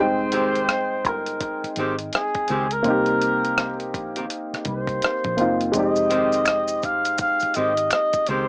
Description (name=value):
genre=R&B, neo-soul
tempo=83 BPM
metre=4/4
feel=swing 62% on 16ths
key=F minor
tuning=A4 = 439 Hz
part: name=warm flugelhorn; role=melody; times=0.0-8.5 s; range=Ab4 to F5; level=-22 LUFS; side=equal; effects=cassette tape
part: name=warm upright piano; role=accompaniment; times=0.0-8.5 s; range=Ab3 to G5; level=-24 LUFS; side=equal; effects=none
part: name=vintage muted fingered electric bass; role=bass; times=0.0-8.5 s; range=F1 to Db2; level=-32 LUFS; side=equal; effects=none
part: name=archtop guitar, miked and amplified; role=second line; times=0.3-8.5 s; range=Eb3 to G4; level=-25 LUFS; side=equal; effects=none
part: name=dusty soul sampler-style drum kit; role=drums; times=0.3-8.5 s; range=hi-hat, kick drum, rim click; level=-26 LUFS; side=equal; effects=cassette tape
part: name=maracas and finger snaps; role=percussion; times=5.7-8.3 s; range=none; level=-29 LUFS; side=equal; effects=none
room=moderate booth ambience, RT60 0.2 s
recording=home recording on cassette, small speaker sound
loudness=-20 LUFS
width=side -36 dB against mid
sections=0.0-8.5 A section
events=none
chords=0.0 Fm9; 2.8 Cm7; 5.7 Fm9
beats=0.68 1.40 2.12 | 2.85 3.57 4.29 5.01 | 5.74 6.46 7.18 7.91